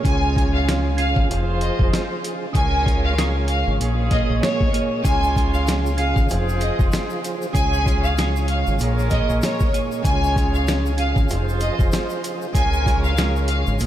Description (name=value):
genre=hip hop, boom-bap hip-hop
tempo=96 BPM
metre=4/4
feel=swing 59% on 16ths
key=Db major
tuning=A4 = 440 Hz
part: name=warm studio violin section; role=melody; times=0.0-13.6 s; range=Db5 to Ab5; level=-25 LUFS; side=equal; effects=high-pass filter, low-pass filter, ping-pong delay
part: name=percussive tonewheel organ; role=accompaniment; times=0.0-13.9 s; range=Bb2 to Db5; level=-25 LUFS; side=right 3 dB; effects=chorus vibrato, slow rotary speaker, high-pass filter, low-pass filter
part: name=clear horn section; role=stabs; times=0.0-13.9 s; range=Ab3 to Db5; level=-31 LUFS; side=equal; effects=high-pass filter, low-pass filter, ping-pong delay
part: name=boom bap sampler-style drum kit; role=drums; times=0.0-13.9 s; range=hi-hat, kick drum, snare drum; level=-22 LUFS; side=equal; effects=none
part: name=deep dub fingered electric bass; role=bass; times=0.1-13.9 s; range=F1 to Db2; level=-22 LUFS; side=equal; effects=none
part: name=tube shaker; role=percussion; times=5.0-13.9 s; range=none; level=-42 LUFS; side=left 7 dB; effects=none
room=light reverb, small room ambience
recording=none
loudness=-18 LUFS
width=side -12 dB against mid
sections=0.0-13.9 A section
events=none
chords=0.0 Db; 1.3 Fm; 2.5 Db; 3.8 Bbm7; 5.0 Db; 6.3 Fm; 7.5 Db; 8.8 Bbm7; 10.0 Db; 11.3 Fm; 12.5 Db